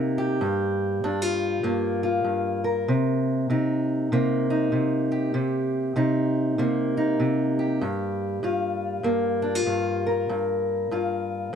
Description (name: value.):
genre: blues.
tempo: 97 BPM.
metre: 4/4.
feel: swing 62% on 8ths.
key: G minor.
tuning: A4 = 441 Hz.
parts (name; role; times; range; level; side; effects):
fingerpicked steel-string acoustic guitar; solo; 0.0-11.6 s; G2 to Bb4; -22 LUFS; equal; none.
room: moderate studio ambience, RT60 0.5 s.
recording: dark, warm production.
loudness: -22 LUFS.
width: side -7 dB against mid.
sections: 0.0-11.6 A section.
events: none.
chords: 0.4 Gm7; 2.9 Cm7; 7.8 Gm7.